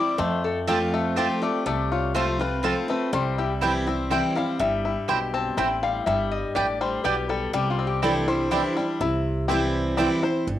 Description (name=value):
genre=bluegrass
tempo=122 BPM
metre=3/4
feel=straight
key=C major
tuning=A4 = 442 Hz
part: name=bluegrass banjo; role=melody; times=0.0-10.5 s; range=G3 to D5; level=-28 LUFS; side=left 5 dB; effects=none
part: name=lap resonator guitar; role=melody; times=0.0-8.8 s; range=F4 to A5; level=-28 LUFS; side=left 4 dB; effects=none
part: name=picked steel-string acoustic guitar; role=accompaniment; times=0.0-10.6 s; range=F2 to F4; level=-27 LUFS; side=right 1 dB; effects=cassette tape
part: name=upright bass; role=bass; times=0.2-10.6 s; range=G1 to F2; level=-30 LUFS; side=right 1 dB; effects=none
part: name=mandolin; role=stabs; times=0.7-10.1 s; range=B3 to A5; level=-27 LUFS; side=right 7 dB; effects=cassette tape
room=moderate studio reverb, RT60 0.6 s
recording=home recording on cassette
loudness=-22 LUFS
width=side -12 dB against mid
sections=0.0-9.0 A section; 9.0-10.6 B section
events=five-string banjo solo 9.0-10.6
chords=0.2 F; 3.1 C; 6.1 G; 7.5 Cadd9; 9.0 C